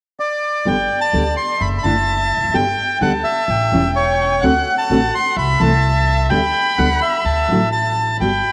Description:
tango; 128 BPM; 4/4; rubato; G major; A4 = 445 Hz
bandoneon; melody; 0.2-8.5 s; C#5 to C6; -20 LUFS; equal
warm violin; second line; 0.6-8.5 s; D5 to B5; -25 LUFS; equal
nylon-string guitar; accompaniment; 0.7-8.3 s; C3 to G4; -24 LUFS; equal
upright bass; bass; 0.7-8.4 s; E1 to D2; -23 LUFS; equal
moderate plate reverb, RT60 3.5 s; -17 LUFS; mono
0.7-8.5 A section
0.0 N.C.; 0.7 G; 1.6 Dadd9/F#; 2.5 Gadd9; 3.5 A7; 4.4 D7; 5.4 Am/C; 6.3 G/D; 7.3 Dsus2

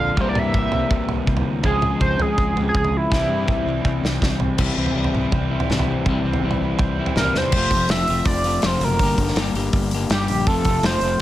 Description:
indie rock; 163 BPM; 4/4; straight; A4 = 440 Hz
sync lead; melody; 0.0-4.2, 7.2-11.2 s; E4 to F5; -23 LUFS; right 2 dB; chorus
electric guitar at the edge of break-up; riff; 0.0-11.2 s; F2 to A4; -23 LUFS; left 4 dB
raw garage guitar; riff; 0.0-7.5 s; C3 to C5; -28 LUFS; right 5 dB; overdrive, wide subtle chorus
fuzz fingered electric bass; bass; 0.0-11.2 s; F1 to G2; -26 LUFS; equal; overdrive
loose indie drum kit; drums; 0.2-11.1 s; crash cymbal, hi-hat, kick drum, snare drum, toms; -22 LUFS; equal
light reverb; -18 LUFS; side -14 dB against mid
0.0-4.6 A section; 4.6-7.5 B section; 7.5-11.2 C section
drum fill 3.1-4.6, 7.3
0.2 C7; 1.7 Dbmaj7; 3.1 C; 7.5 F; 9.0 Gm; 10.5 F

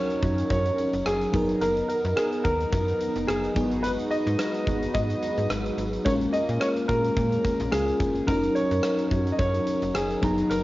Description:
1980s-style pop; 108 BPM; 4/4; swing 55% on 16ths; F# major; A4 = 438 Hz
warm grand piano; melody; 0.0-10.6 s; G#4 to D#5; -28 LUFS; equal; cassette tape, analog delay
FM electric piano with soft pad layer; accompaniment; 0.0-10.6 s; F#3 to A#5; -28 LUFS; left 1 dB; chorus, cassette tape
brassy analog pad; sustained chords; 0.0-10.6 s; F#3 to B4; -30 LUFS; equal; chorus, cassette tape
huge arena drum kit; drums; 0.1-10.6 s; hi-hat, kick drum, rim click; -31 LUFS; equal; cassette tape
slap-like FM bass; bass; 0.2-10.6 s; E#1 to A#2; -30 LUFS; equal
moderate studio reverb, RT60 0.6 s; home recording on cassette, nothing above 7.5 kHz; -22 LUFS; side -17 dB against mid
0.0-10.6 A section
0.0 F#6; 1.3 Bmaj7/F#; 3.6 G#m7; 6.1 A#m7; 8.3 F#6

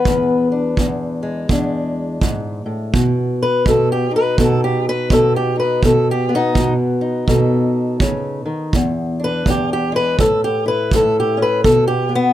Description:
acoustic country blues, solo or duo; 83 BPM; 4/4; swing 61% on 8ths; A4 = 440 Hz
fingerpicked acoustic archtop guitar; melody; 0.0-12.3 s; E2 to B4; -15 LUFS; left 1 dB; plate reverb
kick drum; drums; 0.1-11.8 s; -19 LUFS; right 2 dB
moderate booth ambience, RT60 0.2 s; -15 LUFS; side -12 dB against mid
0.0-12.3 A section
steel-string acoustic guitar solo 0.0-12.3
0.0 E7; 2.9 B7; 8.7 E7(no3); 10.2 A5; 11.6 B7(no3)

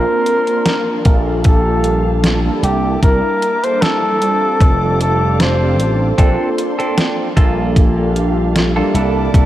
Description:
vaporwave; 76 BPM; 4/4; swing 54% on 16ths; G dorian; A4 = 440 Hz
breathy flugelhorn; melody; 0.0-6.2 s; G4 to C5; -18 LUFS; left 1 dB; tape echo
mellow synth brass; accompaniment; 0.0-9.5 s; G3 to Bb4; -19 LUFS; right 2 dB; wide subtle chorus, tape echo
dark chamber string section; sustained chords; 0.0-9.5 s; Bb3 to D6; -28 LUFS; right 2 dB
slap bass; bass; 0.0-9.5 s; F1 to C2; -17 LUFS; equal
detuned 8-bit digital drum machine; drums; 0.3-9.5 s; hi-hat, snare drum; -19 LUFS; equal; overdrive, small room reverb, gated reverb
electronic kick drum; drums; 1.1-9.5 s; -11 LUFS; equal; overdrive, small room reverb
semi-hollow electric guitar; riff; 6.2-9.5 s; Bb3 to A4; -22 LUFS; right 1 dB; wide subtle chorus, tape echo
light reverb; -12 LUFS; side -13 dB against mid
0.0-9.5 A section
0.0 Bbmaj9; 1.1 Gm9/Bb; 2.6 C13; 4.6 F69; 6.2 Bbmaj9; 7.4 Gm9/Bb; 8.9 C13

